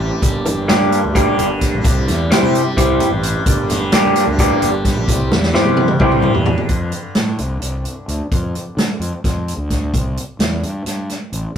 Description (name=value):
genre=psychedelic rock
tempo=259 BPM (eighths)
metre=7/8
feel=straight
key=unclear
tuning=A4 = 440 Hz
part: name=percussive tonewheel organ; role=sustained chords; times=0.0-6.7 s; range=G3 to G4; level=-24 LUFS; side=right 5 dB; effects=slow rotary speaker, chorus vibrato
part: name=fuzz fingered electric bass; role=bass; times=0.0-11.4 s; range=G1 to D3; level=-21 LUFS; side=equal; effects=overdrive
part: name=tanpura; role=drone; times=0.0-11.6 s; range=G2 to G3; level=-25 LUFS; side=left 1 dB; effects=none
part: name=vintage drum kit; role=drums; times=0.2-11.4 s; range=hi-hat, kick drum, snare drum, toms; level=-18 LUFS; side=equal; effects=none
part: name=congas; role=percussion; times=0.2-6.5 s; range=none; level=-26 LUFS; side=left 1 dB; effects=none
part: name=electric guitar through a small old amp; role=riff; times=0.7-6.3 s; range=G3 to G4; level=-15 LUFS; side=left 1 dB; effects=none
room=moderate studio reverb, RT60 0.6 s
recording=rough rehearsal-room recording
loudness=-14 LUFS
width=side -8 dB against mid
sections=0.0-6.7 A section; 6.7-11.6 B section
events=drum fill 5.3-6.7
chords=0.2 Gm; 1.8 C; 3.5 Gm; 5.1 C; 6.7 F5; 9.9 C